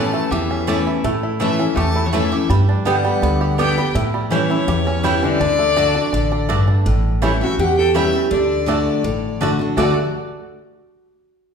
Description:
bluegrass; 165 BPM; 4/4; straight; D major; A4 = 440 Hz
bluegrass banjo; melody; 0.0-10.0 s; G3 to A4; -25 LUFS; right 4 dB
clear fiddle; melody; 0.0-9.9 s; C#5 to A5; -24 LUFS; left 4 dB
lap resonator guitar; second line; 0.0-9.9 s; D3 to A4; -23 LUFS; equal
picked steel-string acoustic guitar; accompaniment; 0.0-9.9 s; E2 to G4; -20 LUFS; left 2 dB
mandolin; stabs; 0.0-9.9 s; A3 to A5; -26 LUFS; right 6 dB
upright bass; bass; 0.0-9.9 s; A1 to A2; -22 LUFS; right 1 dB
wet large studio reverb, RT60 1.2 s; band playing live in one room; -15 LUFS; side -6 dB against mid
0.0-6.9 A section; 6.9-9.8 B section; 9.8-11.2 C section
0.0 A; 2.5 G; 4.0 A7; 5.4 D; 6.9 A7; 8.3 D

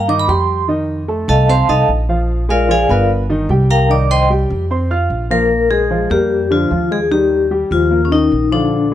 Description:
jazz; 149 BPM; 4/4; straight; Bb mixolydian; A4 = 438 Hz
vibraphone with medium hard mallets; melody; 0.0-8.9 s; Db4 to D6; -15 LUFS; left 2 dB
upright bass; bass; 0.0-8.9 s; G1 to G2; -17 LUFS; equal
warm baby grand piano; accompaniment; 0.1-8.9 s; D3 to F6; -19 LUFS; right 1 dB
mellow trombone; second line; 5.3-8.9 s; Db3 to Bb3; -21 LUFS; left 4 dB
small room ambience; dry, close 1970s-style studio recording; -12 LUFS; side -11 dB against mid
0.0-5.5 A section; 5.5-8.9 B section
vibraphone solo 0.0-5.5
0.0 Cm; 0.7 F7; 2.3 Bb7; 3.1 G7alt; 3.9 Cm; 4.7 F5; 5.5 Bb7; 7.1 Eb

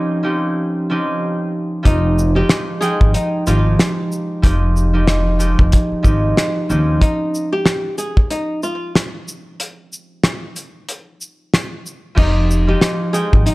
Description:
hip hop, boom-bap hip-hop; 93 BPM; 4/4; swing 58% on 16ths; F minor; A4 = 437 Hz
concert harp; accompaniment; 0.0-13.5 s; F3 to G5; -20 LUFS; right 1 dB; cassette tape, high-pass filter, low-pass filter
flamenco guitar; melody; 1.9-13.5 s; Eb4 to Ab4; -21 LUFS; equal; high-pass filter, low-pass filter, slapback echo
upright bass; bass; 1.9-7.0, 12.2-13.4 s; F1 to Eb2; -16 LUFS; equal
cloth-damped thuddy drum kit; drums; 1.9-13.5 s; crash cymbal, hi-hat, kick drum, rim click, shaker, snare drum; -16 LUFS; equal
light reverb; -14 LUFS; side -21 dB against mid
0.0-1.9 A section; 1.9-12.2 B section; 12.2-13.5 B section
break 0.0-1.9, 7.0-12.2
0.0 Eb13; 1.9 Fm9; 6.7 N.C.; 12.2 Fm9

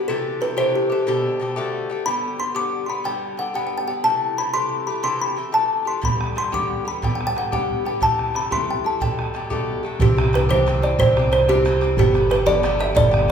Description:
celtic folk, Celtic jig; 121 BPM (dotted quarters); 6/8; straight; G major; A4 = 440 Hz
kalimba; melody; 0.0-13.3 s; G4 to D6; -20 LUFS; right 1 dB
Irish bouzouki; accompaniment; 0.0-13.3 s; G2 to G4; -26 LUFS; left 4 dB
bodhran; percussion; 6.0-13.2 s; -23 LUFS; right 2 dB
upright bass; bass; 10.0-13.3 s; G1 to C2; -22 LUFS; equal
wet recital hall reverb, RT60 1.4 s; recorded in a church or concert hall; -18 LUFS; side -7 dB against mid
0.0-2.1 A section; 2.1-10.0 A section; 10.0-13.3 B section
0.1 Am; 1.1 Gadd9; 2.1 G; 4.0 Am; 6.0 G; 8.0 Am; 9.0 Gadd9; 10.0 C; 12.0 Gadd9

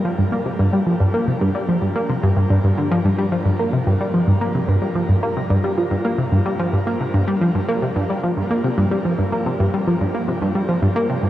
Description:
ambient; 110 BPM; 4/4; straight; G minor; A4 = 440 Hz
tight sequenced synth; solo; 0.0-11.3 s; G2 to Bb3; -17 LUFS; equal; chorus, phaser, cassette tape, tape echo
wet shimmer reverb, RT60 9.0 s; worn, warbling old tape, cassette tape, warbly pitch drift; -17 LUFS; side -13 dB against mid
0.0-11.3 A section

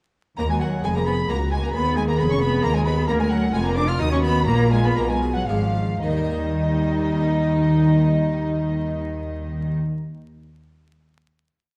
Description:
classical, baroque-style concerto movement with solo episodes; 109-135 BPM; 3/4; straight; A4 = 441 Hz
rich cello; melody; 0.4-9.7 s; F3 to F4; -28 LUFS; equal
warm studio violin section; melody; 0.4-9.7 s; Eb5 to F6; -33 LUFS; equal
rich chamber violin section; second line; 0.4-9.7 s; Eb4 to F6; -33 LUFS; equal
harpsichord; accompaniment; 0.4-10.0 s; Db2 to Cb5; -35 LUFS; equal
warm chamber viola section; accompaniment; 0.4-9.7 s; G3 to Bb4; -31 LUFS; equal
rich chamber double bass section; bass; 0.4-9.7 s; F1 to Eb2; -27 LUFS; equal
warm studio cello section; bass; 0.4-9.7 s; Db2 to Eb3; -27 LUFS; equal
wet recital hall reverb, RT60 1.5 s; dark, warm production, vinyl crackle; -21 LUFS; mono
0.4-6.0 ritornello; 6.0-9.3 final chord
slowing down 2.4-6.0
0.4 Ebm; 1.7 Db13; 3.1 Bb/D; 4.0 Ebm; 4.5 Bb7; 6.0 Eb

